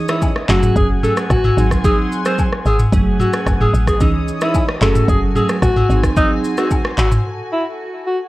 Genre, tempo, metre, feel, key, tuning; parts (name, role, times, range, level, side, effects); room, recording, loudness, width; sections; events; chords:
afrobeats; 111 BPM; 4/4; straight; A4 = 440 Hz
glassy digital keys; accompaniment; 0.0-6.8 s; E3 to G#4; -20 LUFS; right 3 dB; chorus
warm studio string section; sustained chords; 0.0-8.3 s; A3 to D#6; -28 LUFS; left 1 dB
warm alto saxophone; melody; 0.1-8.2 s; D#4 to B#4; -20 LUFS; left 1 dB
afro-pop drum kit; drums; 0.1-7.2 s; handclaps, kick drum, rim click, shaker, toms; -18 LUFS; equal
agogo bells and woodblock; percussion; 0.1-7.1 s; -28 LUFS; left 3 dB
woody log drum bass; bass; 0.5-7.2 s; F#1 to C#2; -17 LUFS; equal
light reverb, digital ambience; worn, warbling old tape, cassette tape, warbly pitch drift; -13 LUFS; side -18 dB against mid
0.0-8.3 A section
break 7.2-8.3
0.5 F#madd9; 1.6 G#7; 2.9 F#madd9; 4.0 C#madd9; 4.8 F#madd9; 5.9 G#7; 7.2 F#madd9